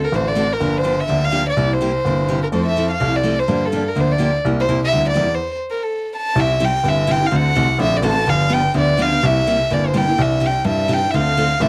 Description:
acoustic string swing (jazz manouche); 251 BPM; 4/4; swing 55% on 8ths; A4 = 438 Hz
warm violin; melody; 0.0-11.7 s; A4 to A5; -21 LUFS; equal
warm grand piano; bass; 0.0-11.7 s; G1 to G2; -22 LUFS; equal
picked steel-string acoustic guitar; accompaniment; 0.1-11.7 s; C3 to A4; -24 LUFS; equal
light reverb; dry, close 1970s-style studio recording; -18 LUFS; mono
0.0-6.4 A section; 6.4-11.7 B section
stop 5.4-6.4
0.0 D7; 0.6 Gm7; 1.6 C7; 2.5 Fmaj7; 3.5 Gm7; 4.4 C7; 5.4 N.C.; 6.4 C; 7.3 D7; 8.3 G7; 9.2 C7; 10.2 Cadd9; 11.1 Dm7

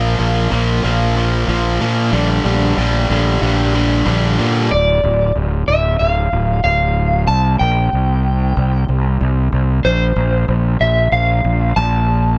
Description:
post-rock; 93 BPM; 4/4; straight; A4 = 436 Hz
distorted electric guitar; riff; 0.0-4.7 s; G2 to Bb3; -19 LUFS; equal; overdrive
fuzz fingered electric bass; bass; 0.0-12.4 s; D1 to Bb2; -18 LUFS; equal; overdrive
electric slide guitar; melody; 4.7-12.4 s; C5 to A5; -20 LUFS; equal; analog delay
light reverb; -16 LUFS; mono
0.0-4.7 A section; 4.7-12.4 B section
build-up 0.0-4.7
0.0 Bb5; 2.1 Gm/Bb; 4.7 Dm; 7.3 C5; 9.9 Bbsus2

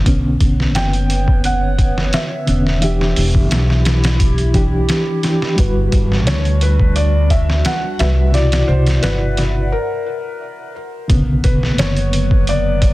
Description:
trip hop; 87 BPM; 4/4; straight; B minor; A4 = 440 Hz
mellow reed electric piano; accompaniment; 0.0-12.9 s; B2 to D5; -20 LUFS; equal; tremolo
upright bass; bass; 0.0-12.9 s; E1 to D2; -16 LUFS; equal; tube saturation
warbly tape-like pad; sustained chords; 0.6-12.9 s; F#3 to F#5; -27 LUFS; right 1 dB; chorus, built-in reverb
trip hop sampler-style drum kit; drums; 0.1-12.9 s; hi-hat, kick drum, snare drum; -17 LUFS; equal; small room reverb
felt-muted upright piano; melody; 0.8-12.9 s; A#4 to G5; -23 LUFS; left 1 dB; tape echo
little or no reverb; dense, heavily limited modern master; -13 LUFS; side -18 dB against mid
0.0-11.1 A section; 11.1-12.9 B section
break 9.7-11.1
0.1 Bmadd9; 2.8 Em7; 5.6 Gmaj7; 8.3 Cmaj9#11; 9.7 N.C.; 11.1 Bmadd9

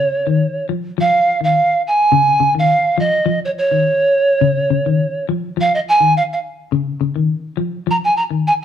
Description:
afrobeat; 104 BPM; 4/4; straight; A4 = 440 Hz
breathy reedy pan flute; melody; 0.0-8.5 s; Db5 to Bb5; -14 LUFS; right 2 dB
clean electric guitar; arpeggios; 0.0-8.5 s; Db3 to F3; -19 LUFS; left 5 dB; tremolo
moderate large studio reverb, RT60 1.2 s; band playing live in one room; -14 LUFS; side -9 dB against mid
0.0-8.6 A section
0.0 Dbadd9

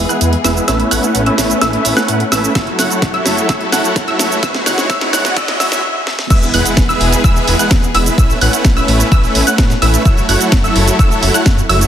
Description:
EDM, festival progressive house; 128 BPM; 4/4; straight; E major; A4 = 440 Hz
rich studio string section; sustained chords; 0.0-11.9 s; E3 to A4; -21 LUFS; left 3 dB; sidechain pumping
wide unison pluck; arpeggios; 0.0-11.9 s; E6 to F#6; -20 LUFS; equal; sidechain pumping, digital delay
supersaw chords; riff; 0.0-11.9 s; G#3 to F#5; -16 LUFS; right 1 dB; sidechain pumping, low-pass filter, digital delay
detuned saw bass; bass; 0.0-11.8 s; E1 to A2; -18 LUFS; equal; tube saturation, sidechain pumping
riser and impact; sound effects; 2.5-8.2 s; -27 LUFS; equal
house drum kit; drums; 0.1-11.9 s; crash cymbal, hi-hat, shaker, snare drum; -18 LUFS; right 1 dB
electronic kick drum; drums; 2.6-11.6 s; -12 LUFS; equal
light reverb; dense, heavily limited modern master, high-pass filter; -10 LUFS; side -10 dB against mid
0.0-6.3 A section; 6.3-11.9 B section
build-up 0.0-6.3; drum fill 0.0-5.8, 6.1; filter sweep on supersaw synth 0.0-6.3; filter sweep 0.0-6.3; stop 5.8-6.3; drop 6.3-11.9; impact 6.3-8.2
0.0 E; 0.7 Aadd9; 2.6 F#m7; 4.4 C#madd9; 6.3 E; 8.2 Aadd9; 10.1 F#m7

